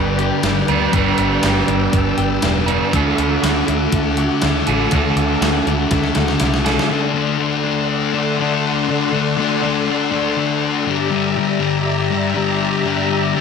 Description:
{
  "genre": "rock, shoegaze and dream pop",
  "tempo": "121 BPM",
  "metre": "4/4",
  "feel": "straight",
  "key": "D mixolydian",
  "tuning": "A4 = 440 Hz",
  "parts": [
    { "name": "string machine, violas", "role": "sustained chords", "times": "0.0-13.4 s", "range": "G4 to E6", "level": "-23 LUFS", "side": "equal", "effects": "ensemble chorus" },
    { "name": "direct-recorded clean electric guitar", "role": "arpeggios", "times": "0.0-6.9 s", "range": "E3 to G4", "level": "-27 LUFS", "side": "left 7 dB", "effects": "ensemble chorus, slapback echo" },
    { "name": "crunchy overdriven guitar", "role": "riff", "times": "0.0-6.9 s", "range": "D3 to B4", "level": "-20 LUFS", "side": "right 11 dB", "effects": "reverse reverb" },
    { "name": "thick fuzz guitar", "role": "riff", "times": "0.0-13.4 s", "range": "G2 to D4", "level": "-19 LUFS", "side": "left 8 dB", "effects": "distortion, lush chorus" },
    { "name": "vintage muted fingered electric bass", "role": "bass", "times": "0.0-6.8 s", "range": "E1 to D2", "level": "-22 LUFS", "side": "equal", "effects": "none" },
    { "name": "gated 80s digital drum machine", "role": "drums", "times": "0.2-6.9 s", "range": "hi-hat, kick drum, snare drum", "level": "-21 LUFS", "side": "equal", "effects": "gated reverb, gated reverb snare, overdrive" }
  ],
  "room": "moderate concert hall reverb, RT60 2.0 s",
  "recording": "none",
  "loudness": "-15 LUFS",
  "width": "side -6 dB against mid",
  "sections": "0.0-6.9 A section; 6.9-13.4 B section",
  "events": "drum fill 5.9-6.9",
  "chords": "0.0 G; 2.9 Dadd9; 6.9 D7; 10.9 Gm6",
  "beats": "0.44 | 0.94 1.44 1.94 2.44 | 2.94 3.43 3.93 4.43 | 4.93 5.42 5.92 6.42 | 6.91 7.41 7.91 8.40 | 8.89 9.39 9.89 10.38 | 10.88 11.37 11.87 12.36 | 12.86 13.35"
}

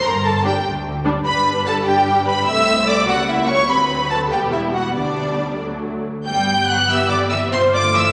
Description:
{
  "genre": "quick classical-period movement for string orchestra",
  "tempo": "97 BPM (dotted quarters)",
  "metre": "6/8",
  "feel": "rubato",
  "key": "G major",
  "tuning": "A4 = 441 Hz",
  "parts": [
    { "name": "warm symphonic violin section", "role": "melody", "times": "0.0-8.1 s", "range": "D5 to G6", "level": "-21 LUFS", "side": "equal", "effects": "none" },
    { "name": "warm symphonic violin section", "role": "second line", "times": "0.0-8.0 s", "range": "D4 to G5", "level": "-23 LUFS", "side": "equal", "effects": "none" },
    { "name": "rich studio cello section", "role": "bass", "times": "0.0-8.0 s", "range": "C2 to G3", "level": "-31 LUFS", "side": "equal", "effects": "none" },
    { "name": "warm symphonic double bass section", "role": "bass", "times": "0.0-8.1 s", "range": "E1 to D2", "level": "-30 LUFS", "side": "equal", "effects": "none" },
    { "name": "warm symphonic viola section", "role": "accompaniment", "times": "0.5-8.1 s", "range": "F#3 to G4", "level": "-26 LUFS", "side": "equal", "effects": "none" }
  ],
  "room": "wet scoring stage reverb, RT60 1.9 s",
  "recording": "none",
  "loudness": "-18 LUFS",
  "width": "mono",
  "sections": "0.0-6.3 A section; 6.3-8.1 B section",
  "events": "none",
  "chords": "0.0 G5; 2.5 Am/C; 3.1 F#7b9/C#; 3.7 D7; 4.3 Em; 5.0 G/D; 5.6 D; 6.3 G; 7.5 G7(no3)",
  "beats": "| 0.04 0.65 | 1.26 1.86 | 2.47 3.08 | 3.69 4.32 | 4.96 5.62 | 6.27 6.90 | 7.53"
}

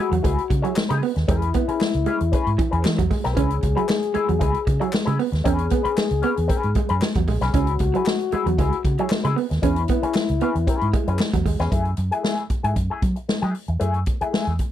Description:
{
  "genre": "funk",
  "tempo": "115 BPM",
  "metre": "4/4",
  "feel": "straight",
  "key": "C# minor",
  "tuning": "A4 = 440 Hz",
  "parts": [
    { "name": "dark trombone", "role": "second line", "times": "0.0-11.4 s", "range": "E4 to G#4", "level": "-27 LUFS", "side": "left 8 dB", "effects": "none" },
    { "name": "electric guitar with an envelope filter", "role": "accompaniment", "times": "0.0-14.6 s", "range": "A3 to C#5", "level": "-26 LUFS", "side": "left 5 dB", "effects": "wah" },
    { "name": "electric guitar through a small old amp", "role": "riff", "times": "0.0-11.5 s", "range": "E3 to C#4", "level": "-27 LUFS", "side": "right 10 dB", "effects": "spring reverb" },
    { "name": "vintage muted fingered electric bass", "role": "bass", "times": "0.1-14.6 s", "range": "A#1 to F#3", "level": "-23 LUFS", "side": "equal", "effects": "none" },
    { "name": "swinging big-band drum kit", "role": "drums", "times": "0.1-14.7 s", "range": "hi-hat, kick drum, snare drum", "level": "-24 LUFS", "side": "equal", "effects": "none" },
    { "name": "group handclap", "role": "percussion", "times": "0.8-11.3 s", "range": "none", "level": "-34 LUFS", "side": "left 5 dB", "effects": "none" }
  ],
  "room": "little or no reverb",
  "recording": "none",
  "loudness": "-19 LUFS",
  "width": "side -11 dB against mid",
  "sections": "0.0-11.7 A section; 11.7-14.7 B section",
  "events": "none",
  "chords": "0.0 C#m7; 1.3 E6; 3.4 C#m7; 5.5 E6; 7.5 C#m7; 11.7 F#m9",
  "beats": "0.24 0.76 | 1.28 1.80 2.33 2.85 | 3.37 3.89 4.41 4.93 | 5.46 5.98 6.50 7.02 | 7.54 8.06 8.59 9.11 | 9.63 10.15 10.67 11.19 | 11.72 12.24 12.76 13.29 | 13.81 14.33"
}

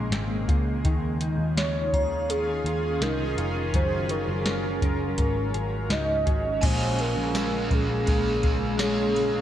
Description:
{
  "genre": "dream pop",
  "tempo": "83 BPM",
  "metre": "4/4",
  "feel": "straight",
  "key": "Bb minor",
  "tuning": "A4 = 444 Hz",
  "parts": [
    { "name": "warm velvety synth lead", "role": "melody", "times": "0.0-9.4 s", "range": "Ab4 to Ab5", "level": "-28 LUFS", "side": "right 2 dB", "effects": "chorus, digital delay" },
    { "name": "granular cloud pad", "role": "sustained chords", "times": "0.0-9.4 s", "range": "Db3 to Bb4", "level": "-30 LUFS", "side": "equal", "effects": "built-in reverb, lush chorus" },
    { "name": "mellow electric guitar", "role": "arpeggios", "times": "0.0-9.4 s", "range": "Ab2 to Bb4", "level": "-32 LUFS", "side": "left 2 dB", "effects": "ensemble chorus, digital delay" },
    { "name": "vintage muted picked electric bass", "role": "bass", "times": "0.0-9.4 s", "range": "F1 to Eb2", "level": "-30 LUFS", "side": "equal", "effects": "none" },
    { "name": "soft vintage rhythm box", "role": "drums", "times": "0.1-9.3 s", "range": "crash cymbal, hi-hat, kick drum, ride cymbal, snare drum, tambourine", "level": "-27 LUFS", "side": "equal", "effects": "gated reverb" },
    { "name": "glassy synth bell", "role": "texture", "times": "1.9-9.4 s", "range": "Db5 to Bb5", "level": "-37 LUFS", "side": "left 3 dB", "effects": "chorus, digital delay" },
    { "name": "crunchy overdriven guitar", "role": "accompaniment", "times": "6.6-9.4 s", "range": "Bb2 to Ab4", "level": "-30 LUFS", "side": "right 1 dB", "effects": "harmonic tremolo, lush chorus" }
  ],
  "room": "moderate lush hall reverb, RT60 2.1 s",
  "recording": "bright 1980s-style digital production",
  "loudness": "-23 LUFS",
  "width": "side -11 dB against mid",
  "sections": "0.0-6.6 A section; 6.6-9.4 B section",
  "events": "none",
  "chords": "0.0 Bbm9; 0.8 Eb9sus4; 3.7 Gbmaj7; 5.2 Ab7sus4; 6.6 Bbm7",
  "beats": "0.12 | 0.84 1.57 2.29 3.01 | 3.73 4.46 5.18 5.90 | 6.63 7.35 8.07 8.79"
}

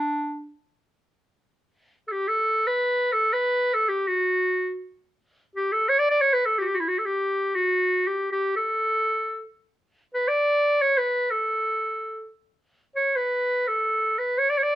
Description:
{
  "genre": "Turkish makam ensemble",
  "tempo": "free time",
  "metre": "none",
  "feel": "none",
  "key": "D makam rast",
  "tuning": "A4 = 439 Hz",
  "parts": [
    { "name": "bright clarinet", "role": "solo", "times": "0.0-14.8 s", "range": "D4 to D5", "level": "-21 LUFS", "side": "equal", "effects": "none" }
  ],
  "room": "light reverb",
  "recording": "minimal, uncompressed stereo recording",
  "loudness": "-22 LUFS",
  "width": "side -13 dB against mid",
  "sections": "0.0-1.8 A section; 1.8-14.8 A section",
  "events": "none",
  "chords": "none",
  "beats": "free time"
}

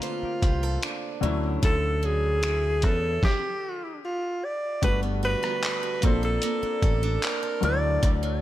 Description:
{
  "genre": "contemporary R&B",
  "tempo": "75 BPM",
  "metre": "4/4",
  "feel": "straight",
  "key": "unclear",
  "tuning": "A4 = 441 Hz",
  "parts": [
    { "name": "warm alto saxophone", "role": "melody", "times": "0.0-8.1 s", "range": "F4 to D5", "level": "-28 LUFS", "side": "equal", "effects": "ping-pong delay" },
    { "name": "warm baby grand piano", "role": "accompaniment", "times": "0.0-8.4 s", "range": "D3 to C5", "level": "-33 LUFS", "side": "left 6 dB", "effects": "none" },
    { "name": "picked steel-string acoustic guitar", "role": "arpeggios", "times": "0.0-8.4 s", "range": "D3 to C5", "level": "-34 LUFS", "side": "right 9 dB", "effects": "none" },
    { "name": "dusty soul sampler-style drum kit", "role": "drums", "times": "0.0-8.2 s", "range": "finger snaps, handclaps, hi-hat, kick drum, rim click, snare drum", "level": "-25 LUFS", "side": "equal", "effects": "none" },
    { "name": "deep dub picked electric bass", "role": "bass", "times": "0.2-8.4 s", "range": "G1 to E2", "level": "-27 LUFS", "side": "equal", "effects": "none" }
  ],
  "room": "little or no reverb",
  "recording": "none",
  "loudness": "-23 LUFS",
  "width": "side -14 dB against mid",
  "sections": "0.0-4.8 A section; 4.8-8.4 B section",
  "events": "stop 3.2-4.8",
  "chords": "0.0 Bbmaj9; 1.2 Dmaj9; 3.2 N.C.; 4.8 Gmaj9; 6.0 Bbmaj9; 7.6 Dadd9",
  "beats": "0.03 0.83 | 1.63 2.43 3.23 4.03 | 4.83 5.63 6.43 7.23 | 8.03"
}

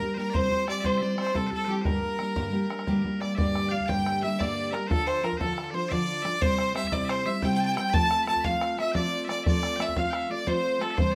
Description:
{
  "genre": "celtic folk, Celtic slip jig",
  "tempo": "118 BPM (dotted quarters)",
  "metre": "9/8",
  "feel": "straight",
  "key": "G dorian",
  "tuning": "A4 = 440 Hz",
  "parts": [
    { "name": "clear fiddle", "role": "melody", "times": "0.0-11.1 s", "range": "G4 to A5", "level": "-31 LUFS", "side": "equal", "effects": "none" },
    { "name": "bowl-back mandolin", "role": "second line", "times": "0.0-11.1 s", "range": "G4 to A5", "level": "-40 LUFS", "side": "equal", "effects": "none" },
    { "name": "loud bright bagpipes", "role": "second line", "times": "0.0-11.2 s", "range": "G4 to B5", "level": "-40 LUFS", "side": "equal", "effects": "none" },
    { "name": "fingerpicked steel-string acoustic guitar", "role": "accompaniment", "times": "0.0-11.2 s", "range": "G2 to C5", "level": "-32 LUFS", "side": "equal", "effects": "none" },
    { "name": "bodhran", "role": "percussion", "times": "0.0-11.1 s", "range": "none", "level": "-33 LUFS", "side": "equal", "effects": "none" }
  ],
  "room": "moderate studio reverb, RT60 0.6 s",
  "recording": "none",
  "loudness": "-27 LUFS",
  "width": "mono",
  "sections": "0.0-3.4 A section; 3.4-11.2 B section",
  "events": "none",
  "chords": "0.3 C; 1.9 Gm; 4.9 Dm; 6.4 C; 7.9 F",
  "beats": "| 0.34 0.84 1.35 | 1.86 2.37 2.87 | 3.38 3.89 4.39 | 4.90 5.41 5.91 | 6.42 6.93 7.43 | 7.94 8.45 8.96 | 9.46 9.97 10.48 | 10.98"
}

